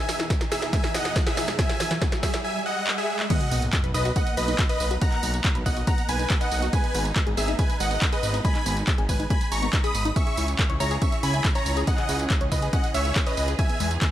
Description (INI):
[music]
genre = uplifting trance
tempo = 140 BPM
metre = 4/4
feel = straight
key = unclear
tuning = A4 = 440 Hz
[part]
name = big supersaw lead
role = melody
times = 0.0-13.9 s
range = G#4 to D#6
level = -28 LUFS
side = equal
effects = sidechain pumping, digital delay
[part]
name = dark studio string section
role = sustained chords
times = 0.0-14.1 s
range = E2 to G#4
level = -36 LUFS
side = right 2 dB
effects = vintage 12-bit sampler grit, sidechain pumping
[part]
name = riser and sub drop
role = sound effects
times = 0.1-5.0 s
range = none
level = -34 LUFS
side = equal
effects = none
[part]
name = tight sequenced synth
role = arpeggios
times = 0.1-14.1 s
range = E2 to C#5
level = -34 LUFS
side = left 2 dB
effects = chorus, sidechain pumping, digital delay
[part]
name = punchy analog drum machine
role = drums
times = 0.1-14.1 s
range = crash cymbal, handclaps, hi-hat, snare drum, tambourine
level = -30 LUFS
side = right 1 dB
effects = none
[part]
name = electronic kick drum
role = drums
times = 0.3-14.1 s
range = none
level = -24 LUFS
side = equal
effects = none
[part]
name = analog pluck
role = second line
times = 3.3-13.9 s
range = D#5 to D#6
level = -36 LUFS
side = equal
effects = chorus, sidechain pumping, digital delay
[part]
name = fat analog bass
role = bass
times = 3.5-14.0 s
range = G#1 to E2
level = -27 LUFS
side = equal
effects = sidechain pumping
[sound]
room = light reverb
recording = none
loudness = -21 LUFS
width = side -12 dB against mid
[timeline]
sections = 0.0-3.3 A section; 3.3-14.1 B section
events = build-up 0.0-3.3; drum fill 0.0-2.4, 2.9-3.3; riser 0.1-3.3; drop 3.3-14.1; impact 3.3-5.0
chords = 0.0 Emaj7; 3.3 Bmaj7; 6.7 G#m; 10.2 C#m; 13.6 Emaj7